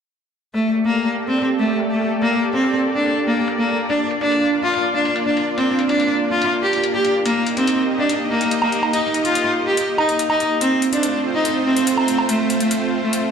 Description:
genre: heavy wobble dubstep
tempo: 143 BPM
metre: 4/4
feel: half-time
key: G minor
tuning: A4 = 440 Hz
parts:
  - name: clear cello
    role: melody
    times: 0.5-13.2 s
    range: A3 to G4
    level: -18 LUFS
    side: equal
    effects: tape echo
  - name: supersaw pad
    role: sustained chords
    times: 0.7-13.3 s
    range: A3 to Eb5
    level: -23 LUFS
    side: right 1 dB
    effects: low-pass filter
  - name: electronic hi-hat and woodblock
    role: drums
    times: 0.5-13.2 s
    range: none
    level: -25 LUFS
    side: equal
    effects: overdrive, low-pass filter on hats, low-pass filter on perc, low-pass filter on room
room: moderate digital room reverb, RT60 0.9 s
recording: played on a big sound system in a bare room, large studio reverb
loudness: -16 LUFS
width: side -7 dB against mid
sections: 0.5-13.3 A section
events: filter sweep on drum 0.5-13.3; filter sweep on supersaw synth 0.5-13.3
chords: 0.5 Gmadd9; 3.9 Bb; 7.3 Eb; 10.6 F

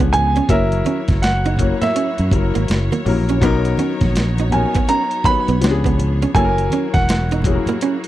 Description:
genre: R&B, neo-soul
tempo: 82 BPM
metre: 4/4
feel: swing 62% on 16ths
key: unclear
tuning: A4 = 440 Hz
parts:
  - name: warm baby grand piano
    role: melody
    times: 0.0-8.1 s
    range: E5 to B5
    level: -21 LUFS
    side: right 2 dB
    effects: slapback echo
  - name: archtop guitar, miked and amplified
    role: second line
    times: 0.0-8.0 s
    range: A#3 to D#4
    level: -22 LUFS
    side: right 7 dB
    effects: none
  - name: warm upright piano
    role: accompaniment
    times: 0.0-8.1 s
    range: E#3 to C#5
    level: -22 LUFS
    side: left 6 dB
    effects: none
  - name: rich studio string section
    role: sustained chords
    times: 0.0-8.1 s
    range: D3 to C#5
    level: -30 LUFS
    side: right 1 dB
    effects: none
  - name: fingered electric bass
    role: bass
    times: 0.0-7.6 s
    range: E1 to F#2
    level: -18 LUFS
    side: equal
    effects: none
  - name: dusty soul sampler-style drum kit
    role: drums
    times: 0.0-8.1 s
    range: hi-hat, kick drum, snare drum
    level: -20 LUFS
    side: equal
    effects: none
  - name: congas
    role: percussion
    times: 0.1-7.8 s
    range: none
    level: -28 LUFS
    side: right 2 dB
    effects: none
room: little or no reverb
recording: dry, close 1970s-style studio recording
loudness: -14 LUFS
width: side -14 dB against mid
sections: 0.0-8.1 A section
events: none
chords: 0.5 F#7; 3.4 Bmaj9; 5.6 C#7b9; 6.3 F#7

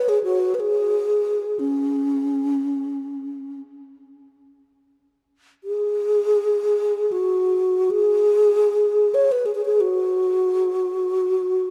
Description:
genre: world meditative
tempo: free time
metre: none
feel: none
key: unclear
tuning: A4 = 440 Hz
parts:
  - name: breathy mellow bass flute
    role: solo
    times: 0.0-11.7 s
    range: C#4 to C#5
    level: -21 LUFS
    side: equal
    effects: tape echo
room: wet church reverb, RT60 3.4 s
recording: dark, warm production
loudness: -21 LUFS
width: mono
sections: 0.0-4.7 A section; 4.7-11.7 A section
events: none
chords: none

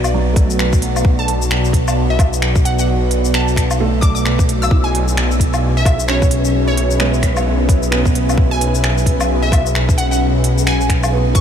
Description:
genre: future garage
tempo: 131 BPM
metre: 4/4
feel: swing 60% on 16ths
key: unclear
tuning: A4 = 440 Hz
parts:
  - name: felt-muted upright piano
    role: accompaniment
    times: 0.0-11.4 s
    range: F#3 to E4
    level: -25 LUFS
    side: right 5 dB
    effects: vintage 12-bit sampler grit, sidechain pumping, tape echo
  - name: deep dark ambient pad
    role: sustained chords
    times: 0.0-11.4 s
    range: B3 to E5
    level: -21 LUFS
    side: equal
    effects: chorus, built-in reverb, sidechain pumping
  - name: swelling detuned saw bass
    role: bass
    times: 0.0-11.4 s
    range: B1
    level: -17 LUFS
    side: equal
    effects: sidechain pumping
  - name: organic electronic drum kit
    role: drums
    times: 0.0-11.4 s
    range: finger snaps, hi-hat, shaker, woodblock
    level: -22 LUFS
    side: left 1 dB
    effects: overdrive
  - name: electronic kick drum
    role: drums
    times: 0.4-11.4 s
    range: none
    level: -14 LUFS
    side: equal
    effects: overdrive
  - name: glassy wavetable pluck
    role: melody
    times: 1.2-11.4 s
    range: C#5 to E6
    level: -23 LUFS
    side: right 1 dB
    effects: chorus, tape echo
  - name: flickering grainy texture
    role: texture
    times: 5.0-11.4 s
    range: B4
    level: -30 LUFS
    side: equal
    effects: none
room: light reverb, digital ambience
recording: none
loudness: -13 LUFS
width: side -8 dB against mid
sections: 0.0-11.4 A section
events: none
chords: 0.0 Bm; 4.7 C#m7/B

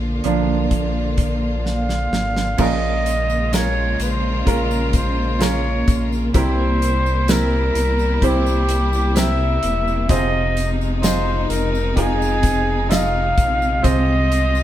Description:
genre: pop ballad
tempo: 64 BPM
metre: 4/4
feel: straight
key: F minor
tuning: A4 = 441 Hz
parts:
  - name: warm studio string section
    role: sustained chords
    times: 0.0-14.6 s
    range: C3 to F4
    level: -24 LUFS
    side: equal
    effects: none
  - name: sub bass with octave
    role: bass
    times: 0.0-14.6 s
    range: E1 to C2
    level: -21 LUFS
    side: left 1 dB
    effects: none
  - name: bright baby grand piano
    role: accompaniment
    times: 0.2-14.6 s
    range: Bb2 to Eb5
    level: -24 LUFS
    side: right 2 dB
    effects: none
  - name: damped 70s drum kit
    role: drums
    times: 0.2-14.5 s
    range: crash cymbal, hi-hat, kick drum, snare drum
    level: -21 LUFS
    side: equal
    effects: none
  - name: clear flugelhorn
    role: melody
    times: 1.7-14.6 s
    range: G4 to F5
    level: -22 LUFS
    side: right 1 dB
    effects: none
  - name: tambourine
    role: percussion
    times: 2.6-14.6 s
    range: none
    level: -35 LUFS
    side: left 6 dB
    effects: none
room: moderate stone room reverb, RT60 1.2 s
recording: band playing live in one room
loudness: -16 LUFS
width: side -12 dB against mid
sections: 0.0-2.6 A section; 2.6-14.6 B section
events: grand piano solo 0.0-2.6; drum fill 1.7-2.6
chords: 0.0 Bb; 2.6 Bbm7; 6.3 C7; 10.1 Fm7; 13.8 Fm/C

